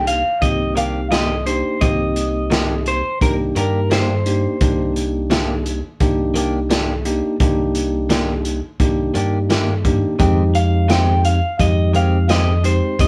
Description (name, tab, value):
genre	straight-eighth soul blues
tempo	86 BPM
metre	4/4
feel	swing 55% on 16ths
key	C minor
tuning	A4 = 440 Hz
part	electric guitar through a small old amp	melody	0.0-4.9, 10.6-13.1 s	Bb4 to G5	-24 LUFS	equal	none
part	bell-like tine electric piano	accompaniment	0.0-13.1 s	Ab3 to G4	-24 LUFS	equal	none
part	fingered electric bass	bass	0.0-13.1 s	C2 to G2	-22 LUFS	equal	none
part	crunchy breakbeat drum kit	drums	0.1-13.1 s	hi-hat, kick drum, snare drum	-23 LUFS	equal	none
part	direct-recorded clean electric guitar	stabs	0.8-12.5 s	Eb3 to G4	-26 LUFS	equal	none
room	moderate studio ambience, RT60 0.4 s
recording	band playing live in one room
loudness	-18 LUFS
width	mono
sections	0.0-13.1 A section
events	none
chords	0.0 Cm9; 10.2 Fm9